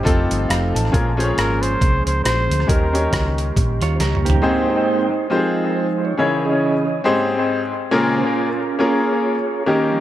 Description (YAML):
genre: uptempo gospel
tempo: 137 BPM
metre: 4/4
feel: swing 58% on 8ths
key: unclear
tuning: A4 = 442 Hz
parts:
  - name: breathy trumpet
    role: melody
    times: 0.0-3.4 s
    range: G4 to C5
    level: -26 LUFS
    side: equal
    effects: dub echo
  - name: bright upright piano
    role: accompaniment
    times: 0.0-10.0 s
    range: Ab2 to A5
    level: -19 LUFS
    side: left 2 dB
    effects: dub echo
  - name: mellow tonewheel organ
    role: sustained chords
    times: 0.0-10.0 s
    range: Db3 to G5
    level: -23 LUFS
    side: right 4 dB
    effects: slow rotary speaker
  - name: hollow-body short-scale fingered electric bass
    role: bass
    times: 0.0-4.4 s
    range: F1 to Eb2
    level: -20 LUFS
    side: equal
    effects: none
  - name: boom bap sampler-style drum kit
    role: drums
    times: 0.1-4.4 s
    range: hi-hat, kick drum, rim click, snare drum, toms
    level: -21 LUFS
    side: equal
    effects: overdrive
  - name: semi-hollow electric guitar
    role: second line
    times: 3.8-4.7 s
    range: Bb3 to Db5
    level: -30 LUFS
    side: right 6 dB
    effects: none
room: light reverb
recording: echo-heavy mix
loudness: -16 LUFS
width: side -13 dB against mid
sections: 0.0-4.4 A section; 4.4-10.0 B section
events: upright piano fill 0.3-0.9; drum fill 4.0-4.4; tonewheel organ solo 4.4-10.0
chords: 0.1 F7; 0.9 Bbm7; 2.7 Eb7; 4.4 Abmaj7; 5.3 Fm7; 6.2 Dbmadd9; 7.1 Abmaj7; 7.9 Bbm7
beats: 0.06 0.50 | 0.94 1.38 1.81 2.25 | 2.69 3.13 3.57 4.00 | 4.44 4.88 5.32 5.75 | 6.19 6.62 7.06 7.50 | 7.93 8.37 8.80 9.24 | 9.68